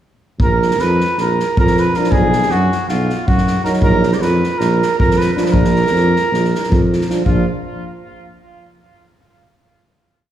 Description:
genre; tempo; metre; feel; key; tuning
balkan folk, Balkan brass band; 314 BPM (eighths); 9/8; straight; Bb phrygian dominant; A4 = 440 Hz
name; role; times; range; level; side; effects
mellow trumpet; melody; 0.4-7.5 s; F4 to D5; -18 LUFS; right 2 dB; tape echo
warm tuba; bass; 0.4-7.5 s; Bb1 to F#2; -17 LUFS; equal; none
unplugged drum kit; percussion; 0.4-7.5 s; kick drum, snare drum; -19 LUFS; equal; none
clear euphonium; accompaniment; 1.9-7.5 s; F3 to F#3; -22 LUFS; right 2 dB; none
mellow trombone; accompaniment; 2.0-7.5 s; D4 to D#4; -26 LUFS; left 6 dB; none
room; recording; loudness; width
moderate scoring stage reverb, RT60 2.0 s; heard from further back in the room, studio ambience; -13 LUFS; side -11 dB against mid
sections
0.4-7.3 A section; 7.3-9.0 final chord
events
none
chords
0.4 Bb5; 2.1 B5; 3.8 Bb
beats
| 0.40 0.59 0.78 0.97 1.17 1.36 1.55 1.74 1.93 | 2.12 2.31 2.50 2.69 2.88 3.06 3.25 3.44 3.63 | 3.82 4.01 4.20 4.39 4.58 4.77 4.96 5.15 5.34 | 5.54 5.73 5.92 6.11 6.30 6.50 6.69 6.88 7.07 | 7.27 7.46

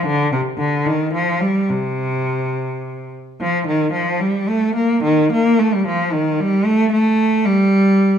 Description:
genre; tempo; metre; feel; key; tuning
classical, baroque-style suite movement for unaccompanied cello; 73 BPM (dotted quarters); 6/8; uneven beats, rubato; unclear; A4 = 440 Hz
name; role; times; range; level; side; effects
clear cello; solo; 0.0-8.2 s; C3 to Bb3; -15 LUFS; equal; none
room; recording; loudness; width
moderate recital hall reverb, RT60 1.5 s; dark, warm production; -15 LUFS; side -8 dB against mid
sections
0.0-3.4 A section; 3.4-8.2 B section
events
none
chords
none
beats
| 0.08 0.87 | 1.71 2.56 | 3.41 4.22 | 5.06 5.88 | 6.67 7.45

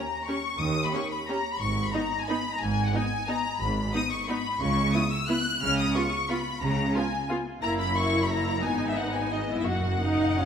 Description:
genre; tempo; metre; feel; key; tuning
classical; 179 BPM; 3/4; uneven beats, rubato; G# minor; A4 = 440 Hz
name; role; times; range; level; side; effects
clear symphonic violin section; melody; 0.0-10.5 s; D#5 to F#6; -30 LUFS; left 4 dB; none
rich symphonic violin section; second line; 0.0-10.5 s; D#5 to F#6; -34 LUFS; left 3 dB; none
rich symphonic viola section; accompaniment; 0.3-10.5 s; A#3 to G4; -30 LUFS; equal; none
clear symphonic cello section; bass; 0.6-10.5 s; D#2 to C#3; -32 LUFS; right 2 dB; none
rich symphonic double bass section; bass; 0.6-10.5 s; F#1 to D#2; -32 LUFS; right 2 dB; none
timpani; percussion; 9.7-10.5 s; F#2; -33 LUFS; equal; none
room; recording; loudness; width
wet scoring stage reverb, RT60 1.5 s; none; -25 LUFS; side -7 dB against mid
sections
0.0-10.5 A section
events
timpani fill 9.7-10.5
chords
0.0 D#7; 1.6 G#m; 4.6 C#m7; 5.6 C#7; 7.6 F#7; 8.6 G#m; 9.7 F#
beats
0.27 | 0.60 0.94 1.28 | 1.61 1.94 2.29 | 2.62 2.95 3.29 | 3.61 3.94 4.28 | 4.61 4.94 5.29 | 5.62 5.95 6.30 | 6.62 6.95 7.30 | 7.63 7.96 8.31 | 8.64 8.97 9.33 | 9.67 10.02 10.39

